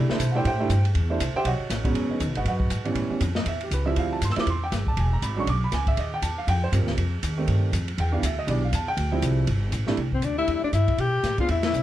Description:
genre	jazz, small-group swing and bop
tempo	239 BPM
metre	4/4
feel	swing 59% on 8ths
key	C major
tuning	A4 = 440 Hz
part	warm grand piano	accompaniment	0.0-11.8 s	E2 to E6	-28 LUFS	right 3 dB	none
part	upright bass	bass	0.0-11.8 s	E1 to B2	-25 LUFS	equal	none
part	open jazz drum kit	drums	0.1-11.8 s	hi-hat, kick drum, ride cymbal, snare drum	-30 LUFS	equal	none
part	clear alto saxophone	melody	10.1-11.8 s	C4 to G4	-25 LUFS	left 6 dB	plate reverb
part	mellow alto saxophone	second line	10.1-11.8 s	C5 to G5	-30 LUFS	left 1 dB	none
room	little or no reverb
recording	dark, warm production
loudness	-22 LUFS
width	side -13 dB against mid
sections	0.0-2.0 A section; 2.0-10.0 A section; 10.0-11.8 B section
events	band accent 11.6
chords	0.0 C6; 1.5 B13; 2.0 Emaj9; 3.0 A7; 4.0 Dm11; 5.0 E13; 6.0 Eb6; 7.0 F9; 8.0 Em7; 9.0 Dm11; 9.5 Gsus2; 10.0 C6; 11.0 Am11

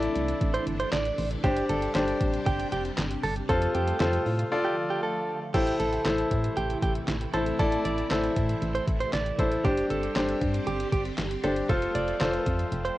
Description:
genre	synth-pop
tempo	117 BPM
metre	4/4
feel	straight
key	unclear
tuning	A4 = 439 Hz
part	direct-recorded clean electric guitar	second line	0.0-13.0 s	G4 to D5	-32 LUFS	right 3 dB	tape echo
part	bright concert grand piano	accompaniment	0.0-13.0 s	D4 to D5	-28 LUFS	left 2 dB	none
part	phased string machine	sustained chords	0.0-13.0 s	C3 to G4	-36 LUFS	equal	ensemble chorus, phaser
part	solid FM bass	bass	0.0-12.9 s	F1 to A2	-31 LUFS	equal	none
part	detuned 8-bit digital drum machine	drums	0.0-13.0 s	crash cymbal, handclaps, hi-hat, kick drum, snare drum	-30 LUFS	equal	none
room	light reverb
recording	home recording on cassette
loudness	-24 LUFS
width	side -16 dB against mid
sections	0.0-5.5 A section; 5.5-13.0 B section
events	break 4.5-5.5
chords	0.0 Am; 1.4 Gsus4; 3.5 Fadd9; 4.5 Dm; 5.5 Am; 9.6 Gsus4; 11.7 Fadd9

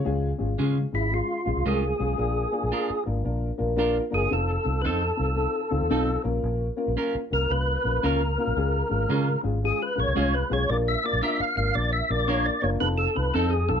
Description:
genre	soul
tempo	113 BPM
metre	4/4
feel	swing 65% on 8ths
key	Db major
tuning	A4 = 441 Hz
part	dark upright piano	accompaniment	0.0-13.8 s	Ab3 to Bb4	-29 LUFS	left 3 dB	none
part	vintage muted fingered electric bass	bass	0.1-13.8 s	F1 to Db3	-27 LUFS	equal	none
part	clean electric guitar	stabs	0.6-13.5 s	Ab3 to Bb4	-29 LUFS	right 4 dB	none
part	percussive tonewheel organ	melody	0.9-13.8 s	Fb4 to F5	-26 LUFS	equal	overdrive, chorus vibrato, slow rotary speaker
room	light reverb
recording	lossy compression artefacts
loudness	-23 LUFS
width	side -8 dB against mid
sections	0.1-13.8 A section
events	tonewheel organ solo 0.1-13.8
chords	0.1 Db; 2.2 Bb; 4.3 F7; 6.2 Bbm; 8.6 Db; 10.7 Bb; 12.8 F7

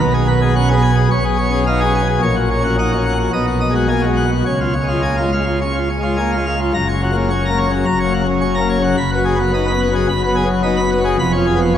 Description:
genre	classical, organ toccata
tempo	108 BPM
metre	4/4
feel	straight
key	F# major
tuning	A4 = 438 Hz
part	pipe organ, plenum	solo	0.0-11.8 s	E#1 to B5	-14 LUFS	equal	none
room	wet cathedral reverb, RT60 4.8 s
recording	none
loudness	-14 LUFS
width	side -10 dB against mid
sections	0.0-6.8 A section; 6.8-11.8 B section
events	none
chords	0.0 G#m7/B; 1.1 C#7/B; 2.2 F#/A#; 3.3 G#m7/B; 4.5 C#; 6.8 F#; 9.0 G#m7/F#; 11.2 C#7/E#

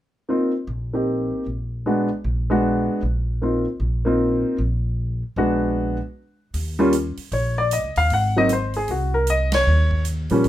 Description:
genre	jazz piano trio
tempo	154 BPM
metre	4/4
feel	swing 64% on 8ths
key	unclear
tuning	A4 = 442 Hz
part	warm upright piano	melody	0.3-10.4 s	F3 to Gb5	-20 LUFS	equal	none
part	upright bass	bass	0.7-10.5 s	Ab1 to Bb2	-23 LUFS	equal	none
part	swinging big-band drum kit	drums	6.5-10.5 s	hi-hat, kick drum, ride cymbal, snare drum	-32 LUFS	right 3 dB	none
room	light reverb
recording	none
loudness	-19 LUFS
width	side -13 dB against mid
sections	0.3-6.5 A section; 6.5-10.5 B section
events	break 6.1-6.5; band accent 9.5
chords	0.3 Eb6/Bb; 6.5 Eb7(no3); 8.1 Ab7; 9.7 Eb7(no3)

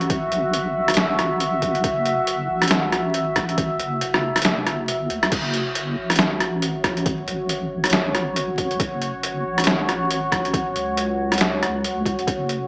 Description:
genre	deep dubstep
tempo	138 BPM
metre	4/4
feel	swing 59% on 16ths, half-time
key	F# minor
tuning	A4 = 439 Hz
part	deep dark ambient pad	sustained chords	0.0-12.7 s	F#4 to E5	-24 LUFS	equal	chorus, built-in reverb
part	deep soft wobble bass	bass	0.0-12.7 s	F#1 to C#2	-27 LUFS	equal	chorus
part	trip hop sampler-style drum kit	drums	0.0-12.6 s	crash cymbal, hi-hat, rim click, snare drum	-21 LUFS	equal	overdrive
part	electronic kick drum	drums	0.1-12.4 s	none	-27 LUFS	equal	overdrive
room	moderate digital room reverb, RT60 1.2 s, digital ambience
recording	vinyl crackle, small speaker sound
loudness	-19 LUFS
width	side -33 dB against mid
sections	0.0-12.7 A section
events	kick drops out 4.9-5.3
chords	0.0 F#m

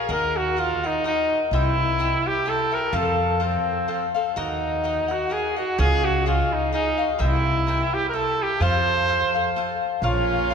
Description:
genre	mexican folk, mariachi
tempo	127 BPM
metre	3/4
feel	swing 55% on 8ths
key	unclear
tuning	A4 = 441 Hz
part	cavaquinho	accompaniment	0.0-10.5 s	F4 to G5	-27 LUFS	left 4 dB	none
part	clear trumpet	melody	0.1-10.5 s	C4 to C5	-22 LUFS	right 1 dB	none
part	upright bass	bass	0.1-10.5 s	Bb1 to F2	-26 LUFS	right 1 dB	none
part	dark studio violin section	sustained chords	10.0-10.5 s	Bb3 to Db5	-29 LUFS	right 5 dB	none
part	warm chamber violin section	second line	10.1-10.5 s	Db4	-30 LUFS	right 3 dB	none
room	wet church reverb, RT60 3.4 s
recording	recorded in a church or concert hall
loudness	-20 LUFS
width	side -6 dB against mid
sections	0.0-10.5 A section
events	none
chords	0.1 Ebm; 1.5 C7; 2.9 F; 4.4 Ebm; 5.8 Dbadd9; 7.2 C7; 8.6 F; 10.0 Bbm

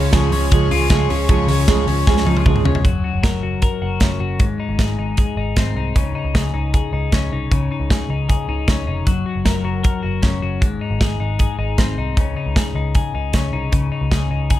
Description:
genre	jangly indie pop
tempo	154 BPM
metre	4/4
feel	straight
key	Db major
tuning	A4 = 440 Hz
part	fingerpicked steel-string acoustic guitar	accompaniment	0.0-2.9 s	Db3 to Db4	-20 LUFS	right 9 dB	none
part	warm chamber string section	sustained chords	0.0-2.8 s	F4 to Db6	-27 LUFS	left 2 dB	none
part	twelve-string electric guitar	arpeggios	0.0-14.6 s	Ab2 to Bb4	-22 LUFS	left 5 dB	analog delay
part	vintage muted picked electric bass	bass	0.0-14.5 s	F1 to Db2	-22 LUFS	equal	none
part	modern studio drum kit	drums	0.1-14.6 s	hi-hat, kick drum, ride cymbal, snare drum, toms	-18 LUFS	equal	none
room	little or no reverb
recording	none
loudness	-16 LUFS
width	side -14 dB against mid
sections	0.0-2.8 A section; 2.8-14.6 B section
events	drum fill 2.1-2.8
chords	0.0 Db; 2.8 Gb; 4.4 Ab; 6.0 Dbsus2; 9.1 Gb; 10.6 Ab; 12.2 Dbsus2

